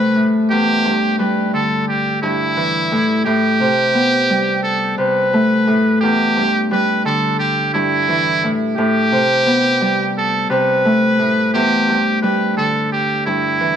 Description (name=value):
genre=hip hop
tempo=87 BPM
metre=4/4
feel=swing 55% on 16ths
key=E minor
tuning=A4 = 440 Hz
part: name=trumpet with metal mute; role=melody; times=0.0-13.8 s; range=E4 to B4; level=-17 LUFS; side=right 1 dB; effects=high-pass filter, low-pass filter, tape echo
part: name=Celtic harp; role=accompaniment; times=0.0-13.8 s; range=E2 to B3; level=-16 LUFS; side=left 1 dB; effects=cassette tape, high-pass filter, low-pass filter
room=moderate small room reverb, RT60 0.5 s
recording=none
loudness=-14 LUFS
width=side -8 dB against mid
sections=0.0-13.8 A section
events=none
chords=0.5 Em7; 2.9 Am9; 6.0 Em7; 8.4 Am9; 11.5 Em7